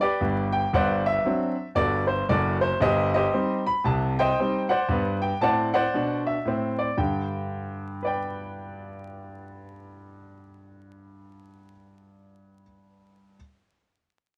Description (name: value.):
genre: jazz, stride piano.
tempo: 115 BPM.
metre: 4/4.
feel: swing 61% on 8ths.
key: G major.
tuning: A4 = 440 Hz.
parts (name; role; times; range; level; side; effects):
clear grand piano; solo; 0.0-13.4 s; F#1 to B5; -26 LUFS; equal; cassette tape.
room: wet small room reverb, RT60 0.5 s.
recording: home recording on cassette, vinyl crackle.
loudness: -25 LUFS.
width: mono.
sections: 0.0-7.0 A section; 7.0-11.1 B section.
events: none.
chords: 0.0 G; 0.7 D7/G; 2.8 Cm/G; 4.9 D7/G; 7.0 G.